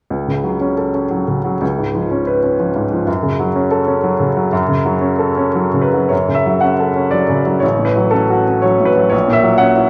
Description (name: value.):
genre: classical, romantic character piece for solo piano.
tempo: 101-129 BPM.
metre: 3/4.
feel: rubato.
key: F# minor.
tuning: A4 = 441 Hz.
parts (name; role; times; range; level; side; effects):
clear baby grand piano; solo; 0.1-9.9 s; A1 to F#5; -15 LUFS; equal; none.
room: wet recital hall reverb, RT60 1.5 s.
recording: worn, warbling old tape, cassette tape, warbly pitch drift.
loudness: -15 LUFS.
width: mono.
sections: 0.1-6.1 A section; 6.1-9.9 B section.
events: none.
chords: 0.1 F#m/C#; 1.6 C#7; 3.1 F#m; 7.6 F#m/A; 9.1 F#7/A#.